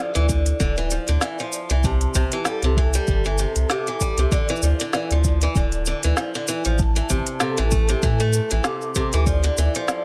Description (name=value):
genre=folktronica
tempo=97 BPM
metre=4/4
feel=swing 56% on 16ths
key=D minor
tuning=A4 = 440 Hz
part: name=vibraphone with medium mallets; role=second line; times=0.0-10.0 s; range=A4 to D6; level=-32 LUFS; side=equal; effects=digital delay
part: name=picked swing-style acoustic guitar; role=arpeggios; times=0.0-10.0 s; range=C3 to A3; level=-28 LUFS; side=equal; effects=delay
part: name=warm sub bass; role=bass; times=0.2-9.7 s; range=D1 to A2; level=-23 LUFS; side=equal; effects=none
part: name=organic electronic drum kit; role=drums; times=0.2-10.0 s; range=hi-hat, shaker, snare drum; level=-29 LUFS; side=equal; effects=none
part: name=electronic kick drum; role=drums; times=0.3-9.4 s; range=none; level=-26 LUFS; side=equal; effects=none
room=little or no reverb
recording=none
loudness=-21 LUFS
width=mono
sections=0.0-4.3 A section; 4.3-10.0 B section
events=none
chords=0.0 Dmadd9; 1.8 C; 4.3 Dmadd9; 6.8 Am; 9.3 Dmadd9